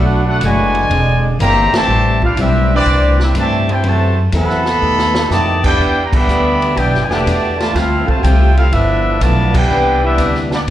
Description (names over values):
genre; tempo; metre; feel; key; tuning
jazz, big band swing; 123 BPM; 4/4; swing 69% on 8ths; unclear; A4 = 440 Hz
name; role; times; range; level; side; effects
mellow trumpet section; melody; 0.0-10.7 s; B3 to B5; -16 LUFS; equal; slapback echo
warm trombone section; second line; 0.0-10.7 s; A2 to G4; -20 LUFS; right 2 dB; slapback echo
picked plugged-in steel-string acoustic guitar; accompaniment; 0.0-10.7 s; G2 to A4; -23 LUFS; left 6 dB; slapback echo
clear trombone section; sustained chords; 0.0-0.2, 5.2-10.5 s; C3 to B4; -24 LUFS; left 2 dB; stereo widening
upright bass; bass; 0.0-10.7 s; E1 to G2; -15 LUFS; equal; none
vintage drum kit; drums; 0.4-10.7 s; crash cymbal, hi-hat, kick drum, ride cymbal, snare drum; -22 LUFS; equal; none
room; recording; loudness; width
light reverb, studio reverb; live gig heard through the venue's PA, club reverb; -11 LUFS; side -12 dB against mid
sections
0.0-10.7 A section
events
band accent 1.6, 6.0, 9.5; drum fill 4.8-5.3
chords
0.0 Bm7; 0.9 E7alt; 1.9 Am11; 3.8 F#m7b5; 4.8 B7alt; 5.8 Em7; 7.7 Dm11; 8.7 G13; 9.7 Cmaj9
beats
0.42 0.91 1.39 | 1.88 2.37 2.86 3.35 | 3.84 4.32 4.81 5.30 | 5.79 6.28 6.77 7.25 | 7.74 8.23 8.72 9.21 | 9.70 10.19 10.68